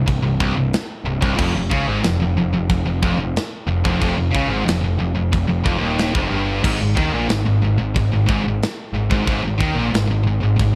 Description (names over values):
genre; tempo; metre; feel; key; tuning
heavy metal; 91 BPM; 4/4; straight; unclear; A4 = 438 Hz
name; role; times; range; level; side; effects
high-gain distorted guitar; riff; 0.0-10.8 s; C2 to Eb3; -24 LUFS; equal; distortion
high-gain distorted guitar; riff; 0.0-10.7 s; C2 to Eb3; -25 LUFS; equal; distortion
fuzz picked electric bass; bass; 0.0-10.7 s; C1 to Eb2; -26 LUFS; equal; overdrive
tight metal drum kit; drums; 0.1-10.7 s; china cymbal, crash cymbal, kick drum, snare drum; -26 LUFS; equal; none
room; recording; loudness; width
light reverb; dark, warm production; -19 LUFS; mono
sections
0.0-10.8 A section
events
none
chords
0.0 N.C.; 1.4 Eb9; 6.6 Ab5